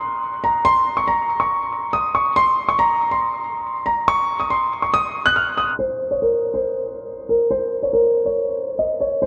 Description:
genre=hip hop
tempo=140 BPM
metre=4/4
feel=half-time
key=unclear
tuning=A4 = 441 Hz
part: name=dark concert grand piano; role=solo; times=0.0-9.3 s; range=Bb4 to Gb6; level=-20 LUFS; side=equal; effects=delay
room=wet cathedral reverb, RT60 5.7 s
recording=dreamy mix soaked in reverb, low-pass filter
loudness=-20 LUFS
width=mono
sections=0.0-5.8 A section; 5.8-9.3 B section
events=filter sweep 5.8-9.3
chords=none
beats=0.22 | 0.65 1.07 1.50 1.93 | 2.36 2.79 3.22 3.65 | 4.08 4.50 4.93 5.36 | 5.79 6.22 6.65 7.08 | 7.50 7.93 8.36 8.79 | 9.22

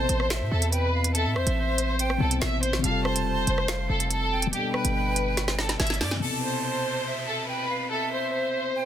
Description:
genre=hip hop, drill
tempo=142 BPM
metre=4/4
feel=half-time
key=A minor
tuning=A4 = 440 Hz
part: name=warm studio violin section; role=melody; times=0.0-8.9 s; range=G4 to F5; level=-28 LUFS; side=equal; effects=low-pass filter, ping-pong delay
part: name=bright silver concert flute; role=second line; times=0.0-8.9 s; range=E5 to A5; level=-33 LUFS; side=right 6 dB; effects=ping-pong delay
part: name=dark concert grand piano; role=accompaniment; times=0.0-8.9 s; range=B2 to C5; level=-32 LUFS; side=left 5 dB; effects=low-pass filter
part: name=hard-hitting 808-style bass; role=bass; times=0.0-6.2 s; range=E1 to A2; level=-27 LUFS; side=equal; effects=none
part: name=drill drum kit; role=drums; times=0.1-6.2 s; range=finger snaps, hi-hat, rim click, snare drum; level=-28 LUFS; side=right 2 dB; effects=soft clipping on snare
part: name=downlifter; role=sound effects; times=6.2-8.9 s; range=none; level=-35 LUFS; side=left 1 dB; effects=none
room=small room ambience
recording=dense, heavily limited modern master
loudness=-23 LUFS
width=side -10 dB against mid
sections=0.0-6.2 A section; 6.2-8.9 B section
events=drum fill 5.4-6.2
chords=0.0 Amadd9; 2.8 Fadd9; 4.5 Gadd9; 6.2 Amadd9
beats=0.30 0.73 | 1.15 1.57 1.99 2.42 | 2.84 3.26 3.69 4.11 | 4.53 4.95 5.38 5.80 | 6.22 6.64 7.07 7.49 | 7.91 8.33 8.76

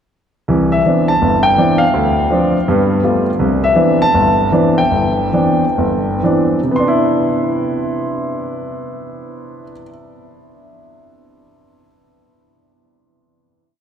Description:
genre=solo jazz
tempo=115-165 BPM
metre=4/4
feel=swing 66% on 8ths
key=C major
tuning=A4 = 441 Hz
part: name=warm grand piano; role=solo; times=0.5-9.9 s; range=G1 to C6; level=-13 LUFS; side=equal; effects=none
room=wet cathedral reverb, RT60 6.1 s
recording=recorded in a church or concert hall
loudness=-12 LUFS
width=side -8 dB against mid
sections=0.5-6.7 A section; 6.7-10.9 final chord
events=slowing down 3.4-6.7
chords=0.5 Cmaj9; 1.9 Dm7; 2.7 G9; 3.4 Cmaj9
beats=| 0.48 0.85 1.21 1.58 | 1.94 2.31 2.67 3.03 | 3.40 3.77 4.14 4.52 | 4.92 5.33 5.77 6.24 | 6.74 7.27 7.79 8.31 | 8.84 9.36 9.88

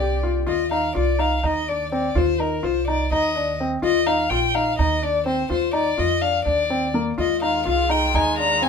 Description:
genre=contemporary instrumental, chamber music in an uneven meter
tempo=250 BPM (eighths)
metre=7/8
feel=straight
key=unclear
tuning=A4 = 440 Hz
part: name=warm violin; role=melody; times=0.0-8.7 s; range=Bb4 to Bb5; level=-23 LUFS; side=left 4 dB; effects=none
part: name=dark studio string section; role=sustained chords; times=0.0-0.4, 7.2-8.7 s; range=D3 to G4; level=-32 LUFS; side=left 2 dB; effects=none
part: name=felt-muted upright piano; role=arpeggios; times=0.0-8.7 s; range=Bb3 to G4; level=-22 LUFS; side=left 3 dB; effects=none
part: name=upright bass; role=bass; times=0.0-8.7 s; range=Bb1 to F2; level=-26 LUFS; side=right 3 dB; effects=none
room=moderate studio ambience, RT60 0.5 s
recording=minimal, uncompressed stereo recording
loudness=-19 LUFS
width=side -6 dB against mid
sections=0.5-8.7 A section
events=none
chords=0.5 F5; 3.8 Eb5; 5.5 Bb/Eb (rootless); 7.2 Fm7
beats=0.00 0.23 | 0.47 0.71 0.95 1.19 1.43 1.67 1.91 | 2.15 2.39 2.63 2.87 3.11 3.35 3.59 | 3.83 4.07 4.31 4.55 4.79 5.03 5.27 | 5.51 5.75 5.99 6.23 6.47 6.71 6.95 | 7.19 7.43 7.67 7.91 8.15 8.39 8.63

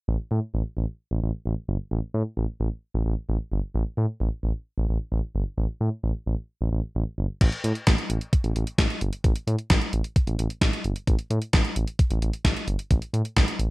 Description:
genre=synth-pop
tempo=131 BPM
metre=4/4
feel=straight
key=unclear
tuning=A4 = 441 Hz
part: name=smooth synth bass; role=bass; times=0.1-13.7 s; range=G1 to A2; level=-25 LUFS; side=equal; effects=none
part: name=gated 80s digital drum machine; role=drums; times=7.4-13.7 s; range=crash cymbal, hi-hat, kick drum, snare drum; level=-22 LUFS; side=equal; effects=gated reverb, gated reverb snare
room=little or no reverb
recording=none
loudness=-23 LUFS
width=side -21 dB against mid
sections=0.1-7.4 A section; 7.4-13.7 B section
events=none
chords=none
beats=| 0.08 0.54 1.00 1.46 | 1.91 2.37 2.83 3.29 | 3.75 4.20 4.66 5.12 | 5.58 6.04 6.49 6.95 | 7.41 7.87 8.33 8.78 | 9.24 9.70 10.16 10.62 | 11.07 11.53 11.99 12.45 | 12.91 13.36

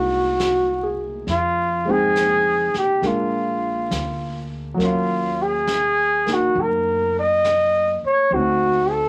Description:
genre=jazz ballad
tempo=68 BPM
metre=4/4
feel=swing 67% on 8ths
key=Eb minor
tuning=A4 = 435 Hz
part: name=breathy flugelhorn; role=melody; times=0.0-9.1 s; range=F4 to Eb5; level=-21 LUFS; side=equal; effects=none
part: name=dark grand piano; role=accompaniment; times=0.0-9.1 s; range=Gb3 to G5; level=-28 LUFS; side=equal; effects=none
part: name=upright bass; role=bass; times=0.0-9.1 s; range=Bb1 to Gb2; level=-34 LUFS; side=equal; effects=none
part: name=vintage brush drum kit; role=drums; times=0.4-9.1 s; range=brushed snare drum, hi-hat, snare drum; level=-37 LUFS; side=equal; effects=none
room=moderate club ambience, RT60 0.5 s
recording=vinyl crackle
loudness=-20 LUFS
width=mono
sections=0.0-9.1 A section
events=none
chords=0.0 C7alt; 1.3 Fm7; 3.0 Bb7; 4.8 Ebm9; 8.3 D7b9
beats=0.39 | 1.27 2.15 3.03 3.91 | 4.79 5.67 6.55 7.43 | 8.31

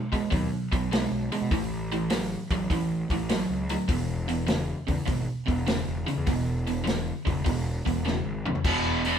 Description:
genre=blues rock power trio and southern rock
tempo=101 BPM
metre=4/4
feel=swing 67% on 8ths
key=E major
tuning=A4 = 440 Hz
part: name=cranked stack guitar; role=riff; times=0.0-9.2 s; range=E2 to G#3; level=-28 LUFS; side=right 1 dB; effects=overdrive
part: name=fuzz picked electric bass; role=bass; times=0.1-9.2 s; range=E1 to B2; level=-32 LUFS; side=left 1 dB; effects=overdrive
part: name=vintage drum kit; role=drums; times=0.1-9.1 s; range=crash cymbal, hi-hat, kick drum, snare drum, toms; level=-30 LUFS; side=equal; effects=none
room=light reverb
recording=band playing live in one room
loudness=-25 LUFS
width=side -8 dB against mid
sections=0.0-8.7 A section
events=drum fill 8.1-8.7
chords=0.0 B5; 1.5 A5; 3.9 E5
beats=0.32 0.91 | 1.51 2.11 2.70 3.30 | 3.90 4.49 5.09 5.68 | 6.28 6.87 7.46 8.06 | 8.65

